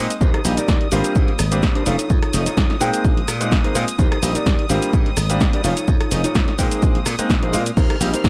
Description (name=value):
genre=filtered disco house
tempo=127 BPM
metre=4/4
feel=swing 54% on 16ths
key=Eb major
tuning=A4 = 440 Hz
part: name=bright grand piano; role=accompaniment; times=0.0-8.1 s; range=F3 to G5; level=-26 LUFS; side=equal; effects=phaser, vintage 12-bit sampler grit, sidechain pumping
part: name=dark studio string section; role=sustained chords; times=0.0-8.3 s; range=Eb6 to F6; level=-34 LUFS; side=equal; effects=sidechain pumping
part: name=glassy slap bass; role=bass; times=0.0-8.3 s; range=F1 to Bb2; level=-25 LUFS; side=equal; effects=tube saturation, sidechain pumping
part: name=mellow electric guitar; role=riff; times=0.1-8.3 s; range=D4 to D5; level=-27 LUFS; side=equal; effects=sidechain pumping
part: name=punchy analog drum machine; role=drums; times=0.1-8.3 s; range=crash cymbal, hi-hat, rim click, shaker, snare drum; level=-27 LUFS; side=equal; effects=none
part: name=electronic kick drum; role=drums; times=0.2-8.3 s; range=none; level=-20 LUFS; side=equal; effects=none
room=digital ambience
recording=none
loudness=-18 LUFS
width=mono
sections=0.0-8.3 A section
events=none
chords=0.2 Eb6; 0.9 Abmaj9#11; 1.9 Faug7; 2.8 Bb9sus4; 4.0 Eb6; 4.7 Abmaj9#11; 5.6 Faug7; 6.6 Bb9sus4; 7.8 Eb6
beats=| 0.21 0.68 1.16 1.63 | 2.10 2.57 3.05 3.52 | 3.99 4.46 4.94 5.41 | 5.88 6.35 6.83 7.30 | 7.77 8.24